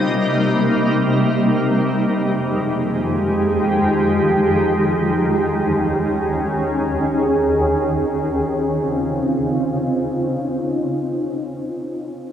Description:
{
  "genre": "hip hop",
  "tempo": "free time",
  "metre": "none",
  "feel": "none",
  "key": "Db lydian",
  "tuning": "A4 = 438 Hz",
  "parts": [
    { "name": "shimmering ambient pad", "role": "solo", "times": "0.0-11.6 s", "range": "Eb2 to Ab4", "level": "-17 LUFS", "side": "equal", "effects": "chorus, built-in reverb, low-pass filter, dub echo" }
  ],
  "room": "moderate plate reverb, RT60 2.7 s",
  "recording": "echo-heavy mix",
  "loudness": "-16 LUFS",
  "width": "side -9 dB against mid",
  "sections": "0.0-8.4 A section; 8.4-11.6 B section",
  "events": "filter sweep on ambient pad 0.0-8.4",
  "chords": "0.0 Cm7; 2.0 Fm9; 5.2 Eb7sus4; 8.4 Dbmaj9"
}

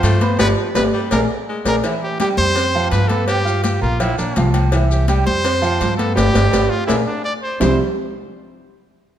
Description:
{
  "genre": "latin, salsa",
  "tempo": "166 BPM",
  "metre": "4/4",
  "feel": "straight",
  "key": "C major",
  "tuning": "A4 = 441 Hz",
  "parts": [
    { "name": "clear trumpet", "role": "melody", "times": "0.0-7.8 s", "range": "D4 to D5", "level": "-21 LUFS", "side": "equal", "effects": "none" },
    { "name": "warm baritone saxophone", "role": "second line", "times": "0.0-1.7 s", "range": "F3 to A3", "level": "-27 LUFS", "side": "left 3 dB", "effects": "none" },
    { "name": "warm upright piano", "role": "accompaniment", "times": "0.0-7.8 s", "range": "C3 to F6", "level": "-21 LUFS", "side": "right 3 dB", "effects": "none" },
    { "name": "upright bass", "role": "bass", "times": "0.0-7.8 s", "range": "G1 to G2", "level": "-19 LUFS", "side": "equal", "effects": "none" },
    { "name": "congas", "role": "percussion", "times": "0.0-7.7 s", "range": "none", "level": "-24 LUFS", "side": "left 4 dB", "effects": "none" },
    { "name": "cowbell and bongos", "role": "percussion", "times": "0.0-7.7 s", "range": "none", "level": "-27 LUFS", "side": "left 4 dB", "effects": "none" },
    { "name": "maracas", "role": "percussion", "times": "0.0-7.7 s", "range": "none", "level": "-34 LUFS", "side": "left 6 dB", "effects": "none" },
    { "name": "timbales and agogo bells", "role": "percussion", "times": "0.0-7.7 s", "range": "none", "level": "-27 LUFS", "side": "right 5 dB", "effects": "none" }
  ],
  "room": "moderate scoring stage reverb, RT60 1.8 s",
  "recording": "none",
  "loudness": "-15 LUFS",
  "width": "side -10 dB against mid",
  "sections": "0.0-1.8 A section; 1.8-7.6 B section; 7.6-9.1 C section",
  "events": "band accent 0.4-1.8, 6.2-7.6; drum fill 0.9-1.8, 6.5-7.6",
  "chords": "0.4 G7; 1.1 Bb7; 1.8 Cadd11; 2.6 F5; 3.3 G7; 4.0 Bb; 4.7 C; 5.4 F5; 6.2 G; 6.9 Bb7; 7.6 C5"
}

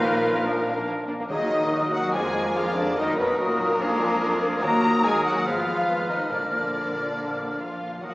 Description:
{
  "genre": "classical",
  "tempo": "143 BPM",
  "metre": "4/4",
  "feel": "straight",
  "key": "Eb minor",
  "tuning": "A4 = 440 Hz",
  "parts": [
    { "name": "dark symphonic violin section", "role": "melody", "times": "0.0-8.1 s", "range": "Bb4 to Bb5", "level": "-28 LUFS", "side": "left 1 dB", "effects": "none" },
    { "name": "bright silver concert flute", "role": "second line", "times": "0.0-8.1 s", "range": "Bb4 to F6", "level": "-30 LUFS", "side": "equal", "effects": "none" },
    { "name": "clear oboe", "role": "second line", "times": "0.0-8.1 s", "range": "Ab4 to Cb5", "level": "-33 LUFS", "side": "equal", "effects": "none" },
    { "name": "rich symphonic violin section", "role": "second line", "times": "0.0-8.1 s", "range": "Bb3 to Bb4", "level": "-31 LUFS", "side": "equal", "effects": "none" },
    { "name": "warm clarinet", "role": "second line", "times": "0.0-8.1 s", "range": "D4 to Cb5", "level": "-32 LUFS", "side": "equal", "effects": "none" },
    { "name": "dark bassoon", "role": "accompaniment", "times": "0.0-8.1 s", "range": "F3 to Gb3", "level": "-33 LUFS", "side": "right 1 dB", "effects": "none" },
    { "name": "rich symphonic viola section", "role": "accompaniment", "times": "0.0-8.1 s", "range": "D3 to Bb4", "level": "-33 LUFS", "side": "equal", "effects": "none" },
    { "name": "concert harp", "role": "arpeggios", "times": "0.0-8.1 s", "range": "F2 to Eb6", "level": "-37 LUFS", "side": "left 1 dB", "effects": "none" },
    { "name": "warm trumpet", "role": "stabs", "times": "0.0-0.9 s", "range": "F4", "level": "-30 LUFS", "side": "equal", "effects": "none" },
    { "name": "rich symphonic cello section", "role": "bass", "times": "0.0-8.1 s", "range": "Bb2 to Bb3", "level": "-36 LUFS", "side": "equal", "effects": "none" },
    { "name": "rich symphonic double bass section", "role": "bass", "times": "0.0-8.1 s", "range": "Ab1 to Gb2", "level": "-37 LUFS", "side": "equal", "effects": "none" },
    { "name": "timpani", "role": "percussion", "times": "0.0-1.9, 4.6-6.9 s", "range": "Bb2 to Eb3", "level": "-39 LUFS", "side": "equal", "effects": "none" },
    { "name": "bright trombone section", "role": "sustained chords", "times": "0.4-0.6 s", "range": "Bb2 to F3", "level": "-37 LUFS", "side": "equal", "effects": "none" },
    { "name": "mellow French horn section", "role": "sustained chords", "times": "0.4-8.1 s", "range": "Bb2 to D4", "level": "-31 LUFS", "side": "left 1 dB", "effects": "none" }
  ],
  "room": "wet concert hall reverb, RT60 1.9 s",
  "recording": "recorded in a church or concert hall, small speaker sound",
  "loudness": "-21 LUFS",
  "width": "side -20 dB against mid",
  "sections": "0.0-1.3 A section; 1.3-8.1 B section",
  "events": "none",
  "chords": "0.4 Bb; 1.3 Ebm; 2.1 Bb7/F; 3.0 Ebm/Gb; 3.8 Ddim/F; 4.6 Ebm; 5.5 Fdim/Ab; 6.3 Bb"
}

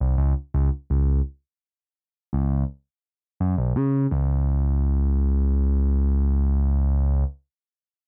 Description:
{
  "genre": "progressive instrumental, progressive",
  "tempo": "free time",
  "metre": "none",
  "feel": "none",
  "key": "unclear",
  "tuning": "A4 = 437 Hz",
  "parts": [
    { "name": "smooth gliding synth bass", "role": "bass", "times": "0.0-7.2 s", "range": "B1 to C#3", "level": "-22 LUFS", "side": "equal", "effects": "none" }
  ],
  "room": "little or no reverb",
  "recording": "home recording on cassette",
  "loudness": "-23 LUFS",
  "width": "mono",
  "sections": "0.0-4.1 A section; 4.1-8.0 B section",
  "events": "none",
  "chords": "none"
}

